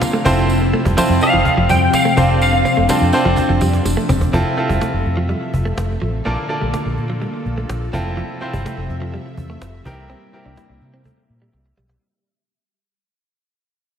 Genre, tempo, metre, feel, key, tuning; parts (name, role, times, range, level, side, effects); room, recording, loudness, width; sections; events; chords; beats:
1980s-style pop; 125 BPM; 4/4; straight; F major; A4 = 440 Hz
bright baby grand piano; accompaniment; 0.0-12.0 s; Bb2 to D5; -22 LUFS; right 1 dB
string machine, cellos; sustained chords; 0.0-12.0 s; C3 to E5; -22 LUFS; left 1 dB; ensemble chorus
direct-recorded clean electric guitar; riff; 0.0-11.8 s; E3 to E4; -26 LUFS; right 2 dB; lush chorus, diffuse ambient delay
cajon; drums; 0.0-12.0 s; -24 LUFS; equal
tambourine; percussion; 0.0-4.2 s; -32 LUFS; right 4 dB
vintage muted fingered electric bass; bass; 0.3-12.0 s; E1 to C3; -20 LUFS; equal
lightly driven lead guitar; melody; 1.2-3.8 s; F5 to G5; -18 LUFS; equal; ensemble chorus, diffuse ambient delay
wet lush hall reverb, RT60 2.2 s; dreamy mix soaked in reverb; -15 LUFS; side -8 dB against mid
0.0-4.3 A section; 4.3-12.0 B section
drum fill 3.4-4.3, 11.5-12.0; fade-out 4.3-12.0
0.3 Fmaj7; 2.2 F6; 4.3 Fmaj7; 6.3 Bbmaj7; 7.9 Fmaj7; 9.9 C7
0.01 | 0.49 0.97 1.45 1.93 | 2.41 2.89 3.37 3.85 | 4.33 4.81 5.29 5.77 | 6.25 6.73 7.21 7.69 | 8.17 8.65 9.13 9.61 | 10.09 10.57 11.05 11.53